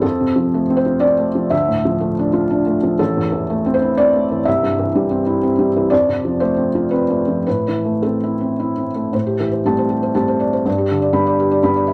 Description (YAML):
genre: neoclassical minimalist piano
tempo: 104-125 BPM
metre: 3/4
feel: rubato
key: A minor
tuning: A4 = 440 Hz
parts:
  - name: felt-muted upright piano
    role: solo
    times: 0.0-11.9 s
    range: A1 to B5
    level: -17 LUFS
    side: equal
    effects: none
room: moderate studio ambience, RT60 0.5 s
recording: vinyl crackle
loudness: -17 LUFS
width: mono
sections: 0.0-9.1 A section; 9.1-11.9 B section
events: none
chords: 0.0 F; 1.5 Dm; 3.0 Am; 4.5 C; 5.9 F; 7.5 Am; 9.1 Am7; 10.7 G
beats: | 0.04 0.53 1.02 | 1.52 2.02 2.51 | 3.00 3.49 3.98 | 4.46 4.95 5.43 | 5.92 6.41 6.91 | 7.46 8.03 8.59 | 9.14 9.66 10.17 | 10.67 11.17 11.65